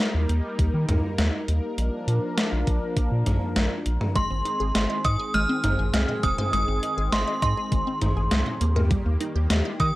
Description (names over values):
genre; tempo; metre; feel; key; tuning
synth-pop; 101 BPM; 4/4; straight; unclear; A4 = 443 Hz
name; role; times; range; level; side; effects
warm analog pad; sustained chords; 0.0-10.0 s; Eb3 to Bb4; -31 LUFS; equal; chorus
gated 80s digital drum machine; drums; 0.0-9.9 s; hi-hat, kick drum, snare drum, toms; -26 LUFS; equal; gated reverb, gated reverb snare, overdrive
round analog bass; bass; 0.1-9.9 s; F1 to Eb3; -24 LUFS; equal; none
synth chime; melody; 4.2-10.0 s; C6 to F6; -26 LUFS; right 1 dB; ensemble chorus
resonant blip pluck; arpeggios; 4.2-9.9 s; G3 to Eb5; -32 LUFS; equal; phaser, analog delay
room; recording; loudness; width
little or no reverb; dry, gritty hardware recording, cassette tape; -22 LUFS; side -18 dB against mid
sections
0.0-4.2 A section; 4.2-10.0 B section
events
none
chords
0.0 Eb; 1.8 Bb; 4.2 Ab; 8.6 Eb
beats
0.00 0.59 1.19 | 1.78 2.37 2.97 3.56 | 4.16 4.75 5.34 5.94 | 6.53 7.13 7.72 8.31 | 8.91 9.50